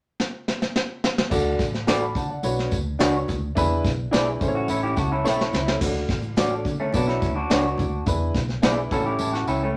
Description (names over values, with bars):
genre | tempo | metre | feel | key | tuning
uptempo 1960s-style soul | 107 BPM | 4/4 | straight | D major | A4 = 438 Hz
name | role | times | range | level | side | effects
vintage brush drum kit | drums | 0.2-9.6 s | crash cymbal, hi-hat, kick drum, snare drum | -27 LUFS | equal | none
warm grand piano | accompaniment | 1.3-9.7 s | C#4 to D6 | -29 LUFS | equal | none
vintage muted fingered electric bass | bass | 1.3-9.8 s | A1 to D3 | -31 LUFS | equal | none
congas | percussion | 1.3-9.6 s | none | -40 LUFS | equal | none
tambourine | percussion | 1.3-9.6 s | none | -43 LUFS | equal | none
electric guitar through a small old amp | stabs | 1.9-8.8 s | D4 to D5 | -27 LUFS | equal | none
electric guitar through a small old amp | riff | 4.6-9.8 s | A3 to A4 | -29 LUFS | equal | none
room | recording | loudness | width
wet studio reverb, RT60 0.6 s | none | -23 LUFS | mono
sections
0.0-1.3 A section; 1.3-5.8 B section; 5.8-9.8 C section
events
drum fill 0.2-1.3, 5.3-5.8; grand piano fill 4.7-5.8, 8.6-9.8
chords
0.0 N.C.; 1.3 D; 2.4 Bmadd9; 3.6 E7; 4.4 A; 5.8 D; 6.9 Bmadd9; 8.1 E7; 8.9 A